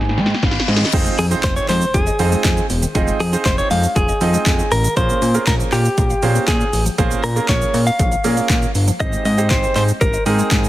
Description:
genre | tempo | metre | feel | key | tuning
dance-pop | 119 BPM | 4/4 | straight | F minor | A4 = 442 Hz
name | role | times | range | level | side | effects
clear concert grand piano | accompaniment | 0.0-10.7 s | Bb3 to Ab5 | -24 LUFS | right 6 dB | sidechain pumping
mallet-like synth pluck | arpeggios | 0.0-10.5 s | Eb3 to F5 | -29 LUFS | left 4 dB | none
fat analog bass | bass | 0.0-10.7 s | E1 to Bb2 | -18 LUFS | equal | sidechain pumping
punchy analog drum machine | drums | 0.0-10.7 s | crash cymbal, handclaps, hi-hat, kick drum, shaker, snare drum | -19 LUFS | equal | none
reverse cymbal and impact | sound effects | 0.1-3.0 s | none | -28 LUFS | left 3 dB | none
direct-recorded clean electric guitar | melody | 1.2-10.7 s | G4 to F5 | -20 LUFS | equal | tape echo
room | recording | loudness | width
light reverb | dense, heavily limited modern master, low-pass filter | -14 LUFS | side -15 dB against mid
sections
0.9-10.7 A section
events
grand piano fill 0.0-0.9; drum fill 0.0-0.9; reverse cymbal 0.1-0.9; impact 0.9-3.0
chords
0.0 Abmaj7(no3); 0.9 Fm7; 5.0 Bbm7; 9.0 Abmaj7

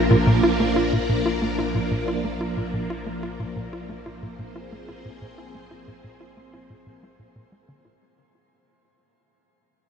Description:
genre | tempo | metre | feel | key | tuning
ambient | 91 BPM | 4/4 | straight | unclear | A4 = 440 Hz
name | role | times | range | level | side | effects
phased string machine | sustained chords | 0.0-8.0 s | F3 to D5 | -25 LUFS | equal | ensemble chorus, phaser
tight sequencer bass | riff | 0.0-7.9 s | Bb2 to F4 | -23 LUFS | equal | ping-pong delay
warm sub bass | bass | 0.0-8.0 s | Bb1 | -34 LUFS | equal | none
room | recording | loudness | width
wet shimmer reverb, RT60 8.3 s | dark, warm production | -21 LUFS | side -7 dB against mid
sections
0.0-8.0 A section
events
fade-out on sub bass 0.0-8.0; fade-out 0.0-8.0; filter sweep on analog synth bass 0.0-8.0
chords
0.0 Bb

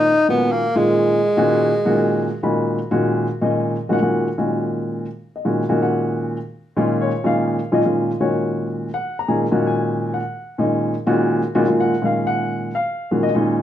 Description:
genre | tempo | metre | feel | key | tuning
jazz | 125 BPM | 4/4 | straight | unclear | A4 = 438 Hz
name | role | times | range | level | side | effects
breathy tenor saxophone | melody | 0.0-2.5 s | G#3 to D#4 | -17 LUFS | equal | none
dark baby grand piano | accompaniment | 0.0-13.6 s | A#2 to B5 | -18 LUFS | equal | none
room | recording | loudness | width
wet studio reverb, RT60 0.6 s | band playing live in one room | -17 LUFS | side -11 dB against mid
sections
0.0-2.9 A section; 2.9-13.6 B section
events
grand piano fill 2.2-2.9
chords
0.0 G#9sus4

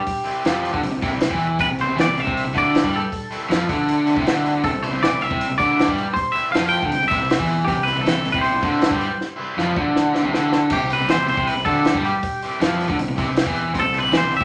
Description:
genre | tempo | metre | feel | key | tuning
indie rock | 158 BPM | 4/4 | straight | C major | A4 = 440 Hz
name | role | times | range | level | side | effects
twangy electric guitar | melody | 0.0-14.4 s | G4 to G5 | -24 LUFS | equal | none
compact cocktail drum kit | drums | 0.1-14.4 s | crash cymbal, hi-hat, kick drum, snare drum | -27 LUFS | equal | none
distorted electric guitar | riff | 0.2-14.4 s | E3 to G4 | -32 LUFS | equal | distortion
fuzz fingered electric bass | bass | 0.4-14.4 s | C2 to G2 | -32 LUFS | equal | overdrive
raw garage guitar | riff | 0.5-14.4 s | C3 to G3 | -24 LUFS | equal | overdrive
room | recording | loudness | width
wet large studio reverb, RT60 0.9 s | vinyl crackle, nothing above 11.0 kHz | -20 LUFS | mono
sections
0.0-10.7 A section; 10.7-14.4 A section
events
drum fill 9.2-10.7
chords
0.0 C

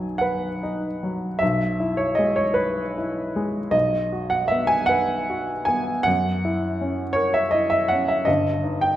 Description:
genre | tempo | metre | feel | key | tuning
classical, romantic nocturne for solo piano | 48-56 BPM (dotted quarters) | 12/8 | rubato | B major | A4 = 440 Hz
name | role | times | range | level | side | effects
warm baby grand piano | solo | 0.0-9.0 s | G1 to G#5 | -20 LUFS | equal | none
room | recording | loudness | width
wet recital hall reverb, RT60 1.6 s | none | -20 LUFS | side -12 dB against mid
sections
0.0-9.0 A section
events
none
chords
0.0 B; 1.4 E/B; 3.7 B5; 6.1 F#7; 8.3 D#/G

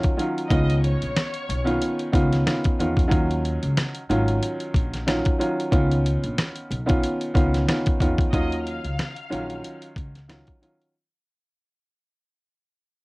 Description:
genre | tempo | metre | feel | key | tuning
hip hop, boom-bap hip-hop | 92 BPM | 4/4 | swing 56% on 16ths | Eb minor | A4 = 440 Hz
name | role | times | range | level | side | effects
warm upright piano | accompaniment | 0.0-10.9 s | Eb3 to F4 | -25 LUFS | equal | high-pass filter, low-pass filter
dusty soul sampler-style drum kit | drums | 0.0-10.9 s | hi-hat, kick drum, rim click, snare drum | -23 LUFS | equal | cassette tape
warm studio violin section | melody | 0.5-2.0, 8.3-9.8 s | Db5 to F6 | -34 LUFS | left 1 dB | high-pass filter, low-pass filter, cassette tape
upright bass | bass | 0.5-10.4 s | Ab1 to Fb2 | -25 LUFS | equal | none
room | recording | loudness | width
light reverb | home recording on cassette | -20 LUFS | side -24 dB against mid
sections
0.0-8.3 A section; 8.3-10.9 B section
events
fade-out 8.3-10.9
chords
0.0 Ebm9; 0.5 Db9; 3.1 Ebm9; 5.7 Db9; 8.3 Ebm9

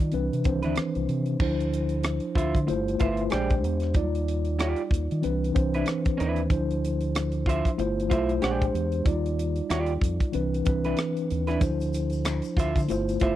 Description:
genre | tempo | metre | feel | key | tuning
R&B, neo-soul | 94 BPM | 4/4 | swing 59% on 16ths | D dorian | A4 = 441 Hz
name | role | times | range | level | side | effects
mellow tine electric piano | accompaniment | 0.0-13.4 s | Eb3 to D5 | -28 LUFS | left 1 dB | medium stereo tremolo
fingered electric bass | bass | 0.0-13.4 s | G1 to Eb3 | -28 LUFS | equal | none
tight funk drum kit | drums | 0.0-13.4 s | crash cymbal, hi-hat, kick drum, rim click | -26 LUFS | equal | none
electric guitar through a small old amp | second line | 0.6-13.4 s | D4 to G5 | -30 LUFS | right 4 dB | none
tube shaker and finger snaps | percussion | 11.6-13.2 s | none | -43 LUFS | left 5 dB | none
room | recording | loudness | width
studio ambience | dry, close 1970s-style studio recording | -24 LUFS | side -13 dB against mid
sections
0.0-1.4 A section; 1.4-13.4 A section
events
none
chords
0.1 Cmaj9; 1.4 Dm9; 2.7 G13sus4; 3.3 Bb13; 3.9 Ebmaj9; 5.2 Cmaj9; 6.5 Dm9; 7.8 G13sus4; 8.4 Bb13; 9.1 Ebmaj9; 10.3 Cmaj9; 11.6 Dm9

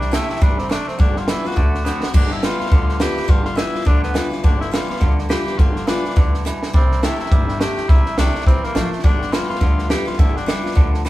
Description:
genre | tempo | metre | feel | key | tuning
rockabilly | 209 BPM | 4/4 | swing 58% on 8ths | G mixolydian | A4 = 440 Hz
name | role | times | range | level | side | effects
raspy tenor saxophone | melody | 0.0-10.9 s | Bb3 to G4 | -26 LUFS | left 2 dB | none
picked steel-string acoustic guitar | accompaniment | 0.0-11.1 s | G2 to G4 | -27 LUFS | left 3 dB | none
twangy electric guitar | riff | 0.0-11.1 s | G2 to B3 | -26 LUFS | right 2 dB | none
upright bass | bass | 0.0-11.1 s | G1 to D2 | -22 LUFS | equal | none
compact cocktail drum kit | drums | 0.0-11.1 s | crash cymbal, hi-hat, kick drum, snare drum | -17 LUFS | equal | none
room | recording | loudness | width
light reverb | band playing live in one room | -15 LUFS | side -16 dB against mid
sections
0.0-2.1 A section; 2.1-11.1 A section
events
drum fill 1.9, 6.5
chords
0.0 C7; 1.0 G7; 1.6 D7; 2.1 G7; 6.7 C7; 9.0 G7

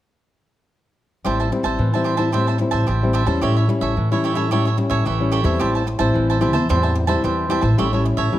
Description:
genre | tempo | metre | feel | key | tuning
samba | 110 BPM | 4/4 | straight | A minor | A4 = 440 Hz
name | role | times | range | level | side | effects
cavaquinho | accompaniment | 1.2-8.4 s | G4 to A5 | -23 LUFS | right 5 dB | none
nylon-string guitar | accompaniment | 1.2-8.4 s | A2 to E4 | -20 LUFS | left 2 dB | none
upright bass | bass | 1.3-8.4 s | A1 to A2 | -21 LUFS | equal | none
room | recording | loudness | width
moderate large studio reverb, RT60 1.1 s | none | -17 LUFS | side -13 dB against mid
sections
1.3-5.6 A section; 5.6-8.4 B section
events
none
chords
1.3 Am7; 7.8 A7

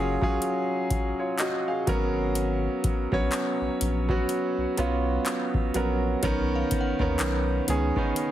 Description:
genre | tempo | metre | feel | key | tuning
contemporary R&B | 62 BPM | 4/4 | swing 58% on 16ths | unclear | A4 = 440 Hz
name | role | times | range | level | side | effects
clear concert grand piano | accompaniment | 0.0-8.3 s | D#3 to F5 | -26 LUFS | right 1 dB | none
saturated sub bass | bass | 0.0-7.9 s | Gb1 to D#2 | -29 LUFS | equal | none
glassy synth bell | texture | 0.0-8.3 s | C#5 to Bb5 | -40 LUFS | left 5 dB | none
booming analog drum machine | drums | 0.2-8.3 s | handclaps, hi-hat, kick drum | -29 LUFS | left 1 dB | none
room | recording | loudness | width
little or no reverb | heavily compressed radio sound, multiband compression | -24 LUFS | side -12 dB against mid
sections
0.0-8.3 A section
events
none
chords
0.0 Ebm11; 1.9 Abm11; 6.2 Bmaj9

